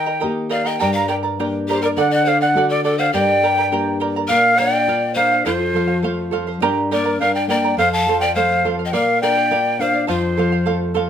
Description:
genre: andean folk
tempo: 103 BPM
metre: 2/4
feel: straight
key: G harmonic minor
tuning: A4 = 441 Hz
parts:
  - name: breathy mellow quena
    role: melody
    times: 0.0-10.9 s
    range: C5 to Bb5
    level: -18 LUFS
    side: equal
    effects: none
  - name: breathy polished pan flute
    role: second line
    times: 0.0-10.9 s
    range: F4 to G5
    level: -22 LUFS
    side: left 4 dB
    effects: none
  - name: charango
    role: accompaniment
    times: 0.0-11.1 s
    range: G4 to Bb5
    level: -22 LUFS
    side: right 6 dB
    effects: none
  - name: nylon-string guitar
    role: accompaniment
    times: 0.0-11.1 s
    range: F2 to G4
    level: -22 LUFS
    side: left 2 dB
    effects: none
room: wet studio reverb, RT60 0.6 s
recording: none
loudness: -15 LUFS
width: side -9 dB against mid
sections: 0.0-4.3 A section; 4.3-11.1 B section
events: none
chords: 0.0 Eb; 0.8 Gm; 2.0 D; 3.1 Gm; 4.3 Bb; 5.5 F; 6.6 Gm; 7.8 F; 8.9 Bb; 10.1 F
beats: 0.22 | 0.81 1.39 | 1.97 2.55 | 3.13 3.71 | 4.29 4.87 | 5.45 6.03 | 6.61 7.19 | 7.77 8.35 | 8.93 9.51 | 10.09 10.66

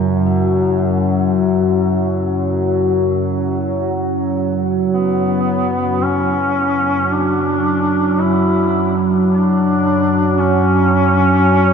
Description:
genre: dark ambient drone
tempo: free time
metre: none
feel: none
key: unclear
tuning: A4 = 444 Hz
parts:
  - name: bronze singing bowl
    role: arpeggios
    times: 0.0-6.2 s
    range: C#3 to E4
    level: -27 LUFS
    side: equal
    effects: ping-pong delay
  - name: analog drone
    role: drone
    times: 0.0-11.7 s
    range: F#2 to F#3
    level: -15 LUFS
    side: equal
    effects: chorus
  - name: mellow duduk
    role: melody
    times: 4.9-11.7 s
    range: B3 to E4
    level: -16 LUFS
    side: equal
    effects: ping-pong delay
room: wet huge ambient reverb, RT60 8.4 s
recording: none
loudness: -14 LUFS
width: side -6 dB against mid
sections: 0.0-6.0 A section; 6.0-11.7 B section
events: none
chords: 0.0 F#5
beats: free time

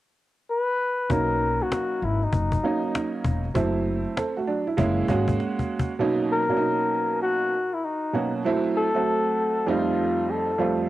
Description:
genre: hip hop, jazz-hop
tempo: 98 BPM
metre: 4/4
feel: swing 64% on 16ths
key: B major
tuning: A4 = 440 Hz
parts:
  - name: mellow flugelhorn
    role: melody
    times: 0.5-10.8 s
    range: D#4 to B4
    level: -25 LUFS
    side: left 2 dB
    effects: tape echo
  - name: warm upright piano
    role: accompaniment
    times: 1.1-10.9 s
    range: F2 to A4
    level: -25 LUFS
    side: right 3 dB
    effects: cassette tape
  - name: upright bass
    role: bass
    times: 1.1-5.3 s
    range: E1 to B1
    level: -27 LUFS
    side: left 1 dB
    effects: none
  - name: cajon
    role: drums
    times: 1.1-5.9 s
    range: none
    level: -28 LUFS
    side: left 2 dB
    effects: cassette tape
room: light reverb, small room ambience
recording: home recording on cassette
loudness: -22 LUFS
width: side -15 dB against mid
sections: 0.0-1.1 A section; 1.1-6.0 B section; 6.0-10.9 C section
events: drum fill 5.4-6.0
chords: 0.0 N.C.; 1.1 Bmaj7; 3.5 F#m7b5; 4.8 F#7; 6.0 Bmaj7; 8.4 F#m7b5; 9.7 F9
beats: 0.49 | 1.10 1.71 2.32 2.94 | 3.55 4.16 4.77 5.38 | 6.00 6.61 7.22 7.83 | 8.45 9.06 9.67 10.28

